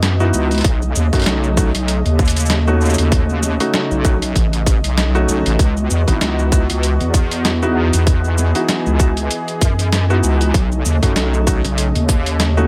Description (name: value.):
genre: glitch hop.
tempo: 97 BPM.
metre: 4/4.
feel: swing 56% on 16ths.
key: unclear.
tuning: A4 = 442 Hz.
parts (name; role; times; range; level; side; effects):
warm analog pad; sustained chords; 0.0-12.7 s; C#3 to D#5; -28 LUFS; equal; chorus, vintage 12-bit sampler grit, sidechain pumping.
wobble bass; bass; 0.0-12.7 s; G#1 to F#2; -19 LUFS; equal; chorus, overdrive.
boom bap sampler-style drum kit; drums; 0.0-12.7 s; hi-hat, shaker, snare drum; -23 LUFS; equal; none.
dark baby grand piano; stabs; 0.2-12.7 s; A3 to F#4; -24 LUFS; equal; sidechain pumping, delay.
electronic kick drum; drums; 0.6-12.2 s; none; -18 LUFS; equal; none.
room: digital ambience.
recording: none.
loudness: -16 LUFS.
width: mono.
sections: 0.0-12.7 A section.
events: none.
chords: 0.0 C#m11; 0.6 B9; 5.6 C#m11; 10.5 B9.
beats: 0.03 | 0.65 1.26 1.88 2.50 | 3.12 3.74 4.36 4.97 | 5.59 6.21 6.83 7.45 | 8.07 8.69 9.30 9.92 | 10.54 11.16 11.78 12.40.